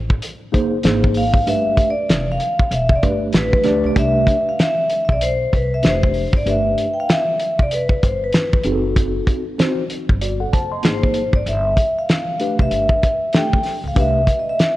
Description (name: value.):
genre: hip hop, jazz-hop.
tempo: 96 BPM.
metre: 4/4.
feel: swing 61% on 16ths.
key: C major.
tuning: A4 = 438 Hz.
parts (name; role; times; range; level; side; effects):
upright bass; bass; 0.0-14.2 s; E1 to D2; -24 LUFS; equal; none.
cloth-damped thuddy drum kit; drums; 0.1-14.8 s; hi-hat, kick drum, snare drum; -18 LUFS; equal; none.
mellow tine electric piano; accompaniment; 0.5-14.2 s; A3 to C6; -23 LUFS; equal; medium stereo tremolo.
vibraphone with medium mallets; melody; 1.2-14.8 s; B4 to G5; -19 LUFS; equal; none.
room: moderate concert hall reverb, RT60 2.2 s.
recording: worn, warbling old tape, cassette tape, warbly pitch drift.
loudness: -15 LUFS.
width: side -16 dB against mid.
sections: 0.0-4.0 A section; 4.0-14.8 B section.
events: vibraphone solo 0.0-4.0.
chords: 0.0 F#dim7; 0.8 Abadd9; 1.5 G69; 4.0 C5; 5.8 Fadd9; 6.5 G7; 8.7 F#dim7; 10.8 Abadd9; 11.5 G13; 14.0 C5.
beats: 0.22 0.84 | 1.47 2.09 2.72 3.34 | 3.97 4.59 5.22 5.84 | 6.47 7.09 7.72 8.34 | 8.97 9.59 10.22 10.84 | 11.47 12.09 12.72 13.34 | 13.97 14.59.